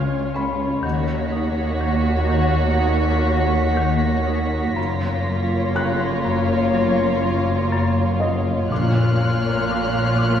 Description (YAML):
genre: cinematic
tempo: 61 BPM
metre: 4/4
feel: straight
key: Eb minor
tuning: A4 = 439 Hz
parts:
  - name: muted studio violin section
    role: melody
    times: 0.0-10.4 s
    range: Db5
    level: -27 LUFS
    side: left 5 dB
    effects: none
  - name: muted studio violin section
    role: second line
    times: 0.0-10.4 s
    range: F4 to Gb4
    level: -25 LUFS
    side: right 1 dB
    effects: none
  - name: muted studio viola section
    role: accompaniment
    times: 0.0-10.4 s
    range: Bb3 to Db4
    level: -27 LUFS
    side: right 1 dB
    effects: none
  - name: marimba with hard mallets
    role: riff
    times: 0.0-10.4 s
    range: Gb2 to Eb4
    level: -25 LUFS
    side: left 3 dB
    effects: none
  - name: muted studio cello section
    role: bass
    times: 0.0-10.4 s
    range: Db2 to Bb2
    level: -26 LUFS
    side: right 1 dB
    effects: none
  - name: muted studio double bass section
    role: bass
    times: 0.0-10.4 s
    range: Gb1 to Eb2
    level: -25 LUFS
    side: right 2 dB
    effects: none
  - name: felt-muted upright piano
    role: texture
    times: 0.0-10.4 s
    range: Eb5 to Gb6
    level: -30 LUFS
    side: left 1 dB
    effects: none
  - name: muted studio violin section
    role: texture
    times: 0.0-10.4 s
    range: F6 to Cb7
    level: -31 LUFS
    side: left 3 dB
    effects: none
  - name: timpani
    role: percussion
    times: 8.7-10.1 s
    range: Bb2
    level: -28 LUFS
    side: right 1 dB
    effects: none
room: wet scoring stage reverb, RT60 1.7 s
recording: heard from further back in the room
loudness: -18 LUFS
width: side -9 dB against mid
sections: 0.0-10.4 A section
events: none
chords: 0.0 Db; 0.8 Ebm7; 4.8 Gbmaj7; 8.7 Bbm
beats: | 0.84 1.82 2.81 3.79 | 4.77 5.76 6.74 7.72 | 8.71 9.69